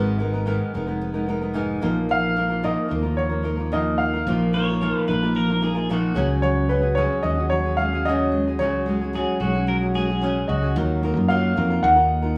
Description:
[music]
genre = acoustic pop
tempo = 111 BPM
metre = 4/4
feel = straight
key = Eb minor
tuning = A4 = 440 Hz
[part]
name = warm upright piano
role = melody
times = 0.0-12.4 s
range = Cb5 to Gb5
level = -26 LUFS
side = equal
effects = none
[part]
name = flamenco guitar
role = accompaniment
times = 0.0-12.4 s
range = Ab2 to Bb4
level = -28 LUFS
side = equal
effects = none
[part]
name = picked steel-string acoustic guitar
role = arpeggios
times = 0.0-12.4 s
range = F3 to F4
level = -31 LUFS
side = equal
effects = none
[part]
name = fingered electric bass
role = bass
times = 0.0-12.4 s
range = F1 to Gb2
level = -27 LUFS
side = equal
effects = none
[part]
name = pedal steel guitar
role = second line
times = 4.5-10.7 s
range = Gb4 to Db5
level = -31 LUFS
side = equal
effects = none
[sound]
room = wet studio reverb, RT60 0.9 s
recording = band playing live in one room, studio ambience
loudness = -22 LUFS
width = mono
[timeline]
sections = 0.0-10.8 A section; 10.8-12.4 B section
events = none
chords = 0.0 Abmadd9; 1.8 Bbsus4; 6.2 Dbsus4; 10.8 Ebmadd9

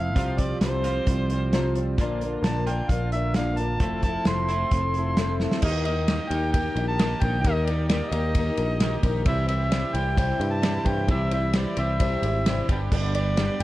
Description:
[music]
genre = folk rock and heartland rock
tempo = 132 BPM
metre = 4/4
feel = straight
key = unclear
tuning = A4 = 445 Hz
[part]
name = mellow harmonica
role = melody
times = 0.0-13.6 s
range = C5 to C6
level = -30 LUFS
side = equal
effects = tape echo
[part]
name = picked old ladder-braced acoustic guitar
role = accompaniment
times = 0.0-13.6 s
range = Bb2 to C5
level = -31 LUFS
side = left 4 dB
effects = none
[part]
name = twelve-string electric guitar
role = riff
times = 0.0-13.6 s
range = G2 to G4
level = -32 LUFS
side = right 4 dB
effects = analog chorus
[part]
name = picked electric bass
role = bass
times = 0.0-13.6 s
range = F1 to G2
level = -27 LUFS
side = equal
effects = none
[part]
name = loose indie drum kit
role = drums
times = 0.2-13.6 s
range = crash cymbal, hi-hat, kick drum, ride cymbal, snare drum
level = -26 LUFS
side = equal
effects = none
[part]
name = mellow tonewheel organ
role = sustained chords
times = 2.0-13.6 s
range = F3 to G4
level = -40 LUFS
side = right 2 dB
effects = none
[sound]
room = light reverb, small room reverb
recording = cassette tape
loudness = -22 LUFS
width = side -16 dB against mid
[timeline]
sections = 0.0-5.6 A section; 5.6-13.6 B section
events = drum fill 5.4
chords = 0.2 Csus4; 2.0 Bb; 3.8 Fmaj7; 5.6 Eb; 9.3 C; 12.7 G

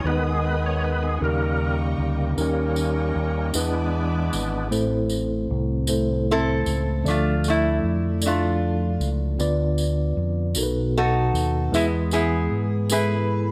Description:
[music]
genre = slow gospel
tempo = 51 BPM (dotted quarters)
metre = 6/8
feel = straight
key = A harmonic minor from 4.7 s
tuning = A4 = 440 Hz
[part]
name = mellow tine electric piano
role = accompaniment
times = 0.0-13.5 s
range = A2 to D5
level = -29 LUFS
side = equal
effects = none
[part]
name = bright tonewheel organ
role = sustained chords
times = 0.0-4.7 s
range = C#3 to C#5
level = -29 LUFS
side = equal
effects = fast rotary speaker, overdrive, chorus vibrato
[part]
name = warm symphonic string section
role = sustained chords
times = 0.0-4.7 s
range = D#5 to D#6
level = -40 LUFS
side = equal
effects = none
[part]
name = fingered electric bass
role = bass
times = 0.0-13.5 s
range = G#1 to G#2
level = -27 LUFS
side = equal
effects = none
[part]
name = tambourine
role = percussion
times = 2.4-13.3 s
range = none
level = -34 LUFS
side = equal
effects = none
[part]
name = lap resonator guitar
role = melody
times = 6.3-13.5 s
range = G#3 to B4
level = -26 LUFS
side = equal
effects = none
[sound]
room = light reverb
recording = none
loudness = -23 LUFS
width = mono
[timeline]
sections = 0.0-2.4 A section; 2.4-4.7 B section; 4.7-13.5 C section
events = tonewheel organ solo 0.0-2.4, 2.4-4.7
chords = 0.0 G#m/D#; 1.2 D#7; 3.5 E7; 4.7 Am; 7.1 Dm; 9.4 Bdim/D; 10.6 B7; 11.7 E

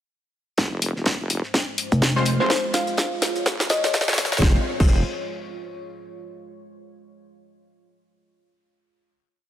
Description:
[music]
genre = bass house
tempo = 125 BPM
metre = 4/4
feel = swing 59% on 16ths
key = F minor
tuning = A4 = 440 Hz
[part]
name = deep dark ambient pad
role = sustained chords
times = 1.4-4.6 s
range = Ab3 to Db5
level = -32 LUFS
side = equal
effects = chorus, built-in reverb, sidechain pumping
[part]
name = wobble bass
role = bass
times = 0.6-5.0 s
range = Eb1 to Ab1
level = -25 LUFS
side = equal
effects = chorus, sidechain pumping, high-pass filter
[part]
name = cloth-damped thuddy drum kit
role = drums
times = 0.6-4.3 s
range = hi-hat, snare drum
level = -33 LUFS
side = left 1 dB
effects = none
[part]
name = electronic kick drum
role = drums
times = 0.6-4.9 s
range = none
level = -21 LUFS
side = equal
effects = high-pass filter on kick, high-pass filter on room
[part]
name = house drum kit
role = drums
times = 0.6-4.9 s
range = crash cymbal, hi-hat, snare drum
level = -24 LUFS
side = equal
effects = none
[part]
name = pulsing pluck wobble bass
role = bass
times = 1.9-4.4 s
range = F1 to Ab1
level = -21 LUFS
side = equal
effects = chorus, sidechain pumping
[part]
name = orchestra-hit-like synth stab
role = stabs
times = 2.2-5.0 s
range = Ab3 to Db5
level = -28 LUFS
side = left 2 dB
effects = built-in reverb, cassette tape, sidechain pumping, digital delay
[part]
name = thumb-piano-like synth pluck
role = melody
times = 2.4-4.2 s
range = C5 to F5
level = -27 LUFS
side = left 1 dB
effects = chorus, digital delay
[sound]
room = light reverb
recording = high-pass filter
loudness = -19 LUFS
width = side -11 dB against mid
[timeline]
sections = 0.6-4.4 build; 4.4-6.3 final chord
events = build-up 0.6-4.4; drum fill 0.6-4.4; filter sweep on ambient pad 0.6-4.4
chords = 0.6 Fm; 2.5 Db; 4.4 Fm

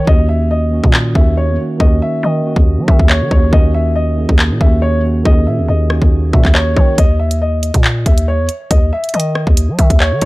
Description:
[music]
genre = hip hop, drill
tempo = 139 BPM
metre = 4/4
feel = half-time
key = Eb phrygian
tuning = A4 = 440 Hz
[part]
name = dark concert grand piano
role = melody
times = 0.0-10.3 s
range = Db5 to Fb5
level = -20 LUFS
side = left 1 dB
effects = none
[part]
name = growling 808-style bass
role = bass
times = 0.0-10.3 s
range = Eb2 to Gb3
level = -15 LUFS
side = equal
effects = none
[part]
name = mellow tine electric piano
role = accompaniment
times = 0.1-7.0 s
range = Eb3 to Ab4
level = -19 LUFS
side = right 2 dB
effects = none
[part]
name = drill drum kit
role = drums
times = 0.1-10.3 s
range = handclaps, hi-hat, kick drum, rim click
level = -12 LUFS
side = equal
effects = none
[sound]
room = little or no reverb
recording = dark, warm production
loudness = -10 LUFS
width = side -20 dB against mid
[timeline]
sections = 0.0-10.3 A section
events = break 0.1-7.0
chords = 0.1 Ebm7; 7.0 N.C.

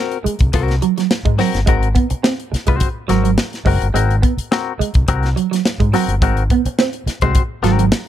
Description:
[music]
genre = funk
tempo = 106 BPM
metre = 4/4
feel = straight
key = Ab mixolydian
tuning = A4 = 439 Hz
[part]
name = direct-recorded clean electric guitar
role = accompaniment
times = 0.0-7.8 s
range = C4 to C5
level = -21 LUFS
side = left 8 dB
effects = phaser
[part]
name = tight funk drum kit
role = drums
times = 0.1-8.1 s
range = hi-hat, kick drum, snare drum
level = -18 LUFS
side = equal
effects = none
[part]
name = electric guitar through a small old amp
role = riff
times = 0.2-7.9 s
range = Gb3 to C4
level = -20 LUFS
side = right 9 dB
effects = phaser
[part]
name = overdriven fingered electric bass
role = bass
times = 0.3-7.9 s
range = Gb1 to Ab2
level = -17 LUFS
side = equal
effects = none
[sound]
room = small room ambience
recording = dark, warm production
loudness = -14 LUFS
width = side -11 dB against mid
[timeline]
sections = 0.0-8.1 A section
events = none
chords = 0.0 Ab9

